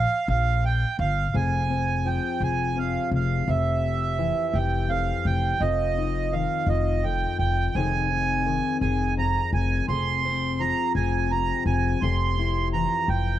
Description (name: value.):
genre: indie folk with a building arrangement.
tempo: 56 BPM (dotted quarters).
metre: 6/8.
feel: straight.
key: F minor.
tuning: A4 = 440 Hz.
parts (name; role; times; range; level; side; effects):
accordion; melody; 0.0-13.4 s; Eb5 to C6; -26 LUFS; right 6 dB; cassette tape, analog delay.
upright bass; bass; 0.0-13.4 s; F1 to Bb1; -26 LUFS; left 1 dB; none.
fingerpicked steel-string acoustic guitar; accompaniment; 1.3-13.4 s; F2 to Ab4; -28 LUFS; left 7 dB; cassette tape.
room: moderate small room reverb, RT60 0.6 s.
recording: home recording on cassette.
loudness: -22 LUFS.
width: side -12 dB against mid.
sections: 0.0-1.3 A section; 1.3-13.4 B section.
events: none.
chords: 0.0 Bb5; 1.3 Fm; 3.5 C/F; 5.6 Ebsus2/F; 7.7 Ab/F; 9.9 Fm; 12.0 C/F.